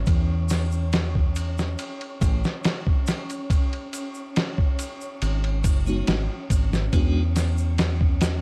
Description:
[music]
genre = trip hop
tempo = 70 BPM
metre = 4/4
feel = straight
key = G# minor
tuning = A4 = 440 Hz
[part]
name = deep dub fingered electric bass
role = bass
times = 0.0-8.4 s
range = F#1 to E2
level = -26 LUFS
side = equal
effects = tube saturation
[part]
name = wind-like tuned noise texture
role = texture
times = 0.0-8.4 s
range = C#4 to C#5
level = -39 LUFS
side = equal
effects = built-in reverb
[part]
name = dusty soul sampler-style drum kit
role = drums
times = 0.1-8.4 s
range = kick drum, ride cymbal, snare drum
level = -26 LUFS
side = equal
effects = none
[part]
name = tube shaker and triangle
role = percussion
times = 0.1-8.4 s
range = none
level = -44 LUFS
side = equal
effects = none
[part]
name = tonewheel organ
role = accompaniment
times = 5.9-7.2 s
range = G#3 to F#4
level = -33 LUFS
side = equal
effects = overdrive, slow rotary speaker, tremolo, tape echo
[sound]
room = little or no reverb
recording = dry, gritty hardware recording, vinyl crackle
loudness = -24 LUFS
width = mono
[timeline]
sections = 0.0-8.4 A section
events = none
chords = 0.1 C#m/E; 1.8 N.C.; 3.5 G#7(no3); 6.9 E7

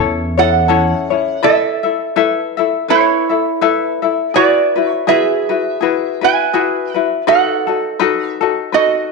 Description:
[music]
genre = Hawaiian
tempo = 82 BPM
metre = 4/4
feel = swing 56% on 8ths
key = A major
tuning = A4 = 440 Hz
[part]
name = lap resonator guitar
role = melody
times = 0.0-9.1 s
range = E4 to G#5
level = -15 LUFS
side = right 10 dB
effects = none
[part]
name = tenor ukulele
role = accompaniment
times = 0.0-9.1 s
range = C#4 to E5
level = -15 LUFS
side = left 10 dB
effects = none
[part]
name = upright bass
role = bass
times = 0.0-0.9 s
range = E2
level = -19 LUFS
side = right 1 dB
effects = none
[sound]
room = wet echo chamber reverb, RT60 1.2 s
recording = 1960s-style stereo with parts hard left and right, nothing above 11.0 kHz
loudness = -12 LUFS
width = side -2 dB against mid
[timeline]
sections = 0.0-1.4 A section; 1.4-9.1 A section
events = none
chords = 0.0 A; 1.4 Asus2; 4.3 Eadd9; 7.3 B7/D#

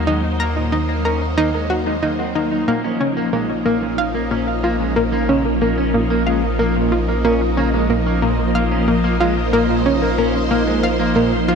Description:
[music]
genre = ambient, sequencer-driven space music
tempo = 92 BPM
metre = 4/4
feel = straight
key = Bb minor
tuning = A4 = 440 Hz
[part]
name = phased string machine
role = sustained chords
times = 0.0-11.6 s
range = F3 to C5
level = -21 LUFS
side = left 1 dB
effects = ensemble chorus, phaser
[part]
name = electric guitar at the edge of break-up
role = arpeggios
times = 0.0-11.6 s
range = Bb2 to Eb4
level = -25 LUFS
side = right 1 dB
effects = auto-pan, analog delay
[part]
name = warm sub bass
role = bass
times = 0.0-11.6 s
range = Bb1 to Eb2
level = -24 LUFS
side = equal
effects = none
[part]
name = bubbling stepped-filter texture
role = texture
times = 0.0-11.6 s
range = Eb4 to Eb5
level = -28 LUFS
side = right 2 dB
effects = chorus, built-in reverb
[part]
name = analog pluck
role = riff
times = 0.1-11.6 s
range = Bb3 to Bb5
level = -20 LUFS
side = equal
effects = chorus, analog delay
[sound]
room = moderate huge ambient reverb, RT60 7.8 s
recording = cassette tape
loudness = -16 LUFS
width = side -6 dB against mid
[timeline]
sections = 0.0-11.6 A section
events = none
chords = 0.0 Ebm; 2.7 Bbm

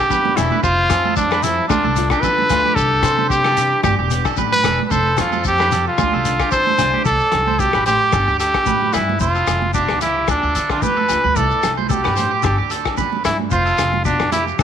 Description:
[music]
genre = highlife guitar band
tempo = 112 BPM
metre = 4/4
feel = swing 54% on 16ths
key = C major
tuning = A4 = 440 Hz
[part]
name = bright trumpet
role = melody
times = 0.0-14.6 s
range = D4 to C5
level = -17 LUFS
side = equal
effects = none
[part]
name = nylon-string guitar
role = accompaniment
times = 0.0-14.6 s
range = F2 to F4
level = -28 LUFS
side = left 10 dB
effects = none
[part]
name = electric guitar at the edge of break-up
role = arpeggios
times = 0.0-14.6 s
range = F4 to D5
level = -24 LUFS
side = right 9 dB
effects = tape echo
[part]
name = shekere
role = percussion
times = 0.0-14.6 s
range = none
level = -28 LUFS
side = left 9 dB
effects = none
[part]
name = vintage drum kit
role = drums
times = 0.1-14.6 s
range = hi-hat, kick drum, rim click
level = -25 LUFS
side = left 4 dB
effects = none
[part]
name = congas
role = percussion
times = 0.1-14.5 s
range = none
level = -26 LUFS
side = right 14 dB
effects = none
[part]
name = upright bass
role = bass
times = 0.4-14.6 s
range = E1 to D3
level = -23 LUFS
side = equal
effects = none
[part]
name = agogo bells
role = percussion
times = 0.4-14.6 s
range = none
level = -29 LUFS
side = left 16 dB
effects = none
[sound]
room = light reverb, studio reverb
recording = 1960s-style stereo with parts hard left and right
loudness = -14 LUFS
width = side -8 dB against mid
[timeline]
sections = 0.0-7.1 A section; 7.1-14.6 B section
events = none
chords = 0.0 G; 0.6 Fadd9; 1.7 Dm; 2.8 Cadd9; 3.8 G; 4.9 Fadd9; 6.0 Dm; 7.1 Csus2; 8.1 G; 9.2 Fadd9; 10.3 Dm; 11.4 Cadd9; 12.4 G; 13.5 Fadd9

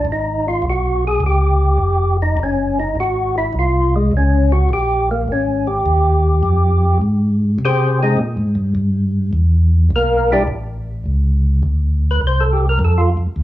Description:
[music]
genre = soul jazz organ trio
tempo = 104 BPM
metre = 4/4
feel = swing 67% on 8ths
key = unclear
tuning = A4 = 440 Hz
[part]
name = percussive tonewheel organ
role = melody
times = 0.0-13.1 s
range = G3 to C5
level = -17 LUFS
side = equal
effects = slow rotary speaker, overdrive, plate reverb
[part]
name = mellow tonewheel organ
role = bass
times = 0.0-13.4 s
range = F1 to C3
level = -16 LUFS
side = equal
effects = slow rotary speaker
[sound]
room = light reverb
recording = worn, warbling old tape, cassette tape, warbly pitch drift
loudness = -14 LUFS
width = side -14 dB against mid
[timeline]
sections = 0.0-13.4 A section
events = tonewheel organ solo 0.0-13.4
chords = 0.1 Abm; 1.2 Db; 2.4 Gbsus2; 4.7 Absus24; 5.9 Ebadd9; 7.0 Abmaj9; 9.3 Em; 10.5 A; 11.6 Dm7

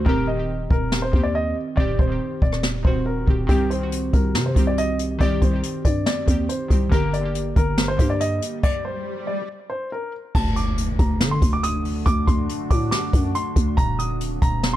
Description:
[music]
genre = hip hop, trap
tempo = 140 BPM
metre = 4/4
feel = half-time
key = unclear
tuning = A4 = 440 Hz
[part]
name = dark baby grand piano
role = melody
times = 0.0-14.8 s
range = G4 to Eb6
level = -27 LUFS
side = left 1 dB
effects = low-pass filter
[part]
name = glassy digital keys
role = accompaniment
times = 0.0-8.7 s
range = D3 to G4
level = -27 LUFS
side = right 2 dB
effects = chorus, low-pass filter
[part]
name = growling 808-style bass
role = bass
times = 0.0-14.8 s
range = Eb1 to D3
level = -24 LUFS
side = equal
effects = none
[part]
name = jazz brush drum kit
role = drums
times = 0.1-14.7 s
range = crash cymbal, hi-hat, kick drum, rim click, snare drum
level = -21 LUFS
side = equal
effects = none
[part]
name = swell and impact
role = sound effects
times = 8.5-12.1 s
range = none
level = -31 LUFS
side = equal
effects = none
[part]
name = deep dark ambient pad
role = sustained chords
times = 11.0-14.8 s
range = D3 to F#4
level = -30 LUFS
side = equal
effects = chorus, built-in reverb
[sound]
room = studio reverb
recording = dark, warm production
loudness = -19 LUFS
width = side -13 dB against mid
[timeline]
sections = 0.0-10.3 A section; 10.3-14.8 B section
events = break 0.0-3.5; swell 8.5-10.3; stop 8.6-10.3; impact 10.3-12.1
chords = 0.1 Eb6; 3.5 Cm; 6.9 Gm; 10.3 D; 13.8 Eb5

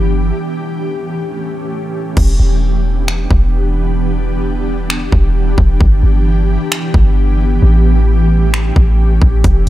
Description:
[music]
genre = hip hop, atmospheric cloud-rap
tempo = 132 BPM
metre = 4/4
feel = half-time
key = unclear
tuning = A4 = 440 Hz
[part]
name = ethereal airy pad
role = sustained chords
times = 0.0-9.7 s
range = E3 to G4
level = -18 LUFS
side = right 1 dB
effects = ensemble chorus, built-in reverb, tremolo, sidechain pumping
[part]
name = clean 808-style bass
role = bass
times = 0.0-9.7 s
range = E1 to A1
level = -12 LUFS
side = equal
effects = none
[part]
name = trap drum kit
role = drums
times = 2.2-9.7 s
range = crash cymbal, finger snaps, hi-hat, kick drum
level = -14 LUFS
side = equal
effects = overdrive
[sound]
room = little or no reverb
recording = none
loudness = -11 LUFS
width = side -15 dB against mid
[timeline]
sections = 0.0-2.2 A section; 2.2-9.7 B section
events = break 0.4-2.2; hi-hats muted 2.2-9.4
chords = 0.4 A7; 2.2 Em7; 5.8 G6; 7.6 A7

